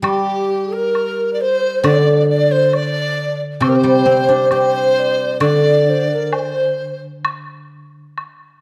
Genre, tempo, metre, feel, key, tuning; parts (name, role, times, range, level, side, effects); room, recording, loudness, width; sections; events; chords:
chinese traditional, Chinese chamber ensemble; 66 BPM; 2/4; rubato; G yu mode; A4 = 440 Hz
breathy mellow large dizi; second line; 0.0-7.0 s; G4 to D5; -22 LUFS; equal
guzheng; accompaniment; 0.0-8.2 s; C3 to G4; -20 LUFS; equal
woodblock; percussion; 0.0-8.4 s; -26 LUFS; equal
breathy mellow low xiao; melody; 0.1-7.0 s; G4 to D5; -21 LUFS; equal
wet recital hall reverb, RT60 1.4 s; dark, warm production; -16 LUFS; mono
0.0-8.6 A section